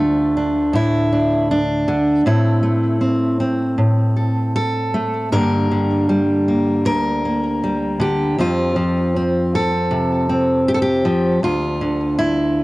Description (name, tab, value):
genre	folk, solo fingerstyle acoustic guitar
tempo	79 BPM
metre	4/4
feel	straight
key	G dorian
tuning	A4 = 443 Hz
part	fingerpicked steel-string acoustic guitar	solo	0.0-12.6 s	D2 to Bb4	-16 LUFS	equal	none
room	moderate spring reverb, RT60 1.5 s, small room reverb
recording	dry, gritty hardware recording, cassette tape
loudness	-16 LUFS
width	side -20 dB against mid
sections	0.0-12.6 A section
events	none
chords	0.0 Dmadd9; 2.3 Am; 5.3 Gm; 8.4 F; 11.4 Dmadd9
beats	0.74 1.50 | 2.25 3.01 3.77 4.55 | 5.33 6.10 6.87 7.63 | 8.40 9.16 9.91 10.67 | 11.43 12.20